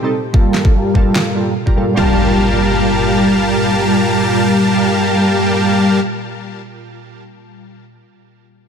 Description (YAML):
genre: future bass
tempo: 147 BPM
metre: 4/4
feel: half-time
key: G minor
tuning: A4 = 440 Hz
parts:
  - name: glassy digital keys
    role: accompaniment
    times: 0.0-6.5 s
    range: G3 to A5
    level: -24 LUFS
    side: right 2 dB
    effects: chorus, sidechain pumping, ping-pong delay
  - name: ethereal airy pad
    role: sustained chords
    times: 0.0-6.0 s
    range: Bb2 to A5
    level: -23 LUFS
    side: left 2 dB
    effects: ensemble chorus, built-in reverb, phaser, sidechain pumping
  - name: dense compressed supersaw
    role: riff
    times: 0.3-6.0 s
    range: G3 to C6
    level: -14 LUFS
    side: equal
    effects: sidechain pumping, low-pass filter, ping-pong delay
  - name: electronic kick drum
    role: drums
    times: 0.3-1.7 s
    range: none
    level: -12 LUFS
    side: equal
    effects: studio reverb
  - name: electronic snare drum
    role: drums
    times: 0.5-1.2 s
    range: none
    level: -21 LUFS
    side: equal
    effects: studio reverb
  - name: impact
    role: sound effects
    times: 2.0-6.5 s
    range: none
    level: -20 LUFS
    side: equal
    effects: none
room: light reverb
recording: none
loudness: -11 LUFS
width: side -7 dB against mid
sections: 0.0-2.0 A section; 2.0-5.2 B section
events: filter sweep on supersaw synth 0.0-2.0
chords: 0.1 Gm9